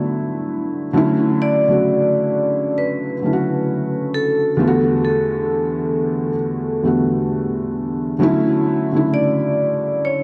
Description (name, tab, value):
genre	hip hop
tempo	66 BPM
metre	4/4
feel	swing 60% on 16ths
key	D major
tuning	A4 = 440 Hz
part	felt-muted upright piano	accompaniment	0.0-10.2 s	E2 to F#4	-20 LUFS	equal	cassette tape
part	vibraphone with hard mallets	melody	1.4-10.2 s	A4 to D5	-23 LUFS	equal	none
room	wet lush hall reverb, RT60 2.5 s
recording	dreamy mix soaked in reverb, cassette tape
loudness	-19 LUFS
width	mono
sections	0.9-10.2 A section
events	none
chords	0.0 D6; 0.9 Dmaj7; 4.6 Em11; 8.2 Dmaj7